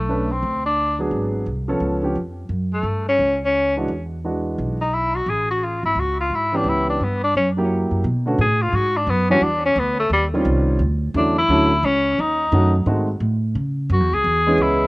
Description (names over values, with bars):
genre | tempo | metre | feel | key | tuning
jazz, small-group swing and bop | 173 BPM | 4/4 | swing 63% on 8ths | unclear | A4 = 441 Hz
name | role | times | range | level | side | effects
breathy tenor saxophone | melody | 0.0-14.9 s | G3 to G#4 | -19 LUFS | left 1 dB | slapback echo
upright bass | bass | 0.0-14.9 s | G#1 to C#3 | -22 LUFS | equal | none
warm grand piano | accompaniment | 0.1-14.9 s | D3 to B4 | -21 LUFS | right 1 dB | none
room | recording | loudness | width
little or no reverb | recorded outdoors, with no room sound | -17 LUFS | side -23 dB against mid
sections
0.0-8.0 A section; 8.0-14.9 B section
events
none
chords
0.0 Bm9; 1.1 G#m7b5; 1.8 C#aug7; 2.5 F#m; 3.9 E9; 5.3 Amaj7; 6.7 C#m7b5; 7.4 F#7b9; 8.0 Bm7; 9.4 Bmadd9; 10.1 D#13; 10.8 Dmaj9; 12.2 D#m7b5; 12.9 G#7b9; 13.6 C#m7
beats
0.08 0.42 0.77 | 1.12 1.46 1.81 2.16 | 2.50 2.85 3.19 3.54 | 3.89 4.24 4.58 4.93 | 5.27 5.62 5.97 6.31 | 6.66 7.00 7.35 7.70 | 8.04 8.39 8.73 9.08 | 9.43 9.77 10.12 10.46 | 10.81 11.15 11.50 11.84 | 12.19 12.53 12.87 13.22 | 13.56 13.90 14.25 14.59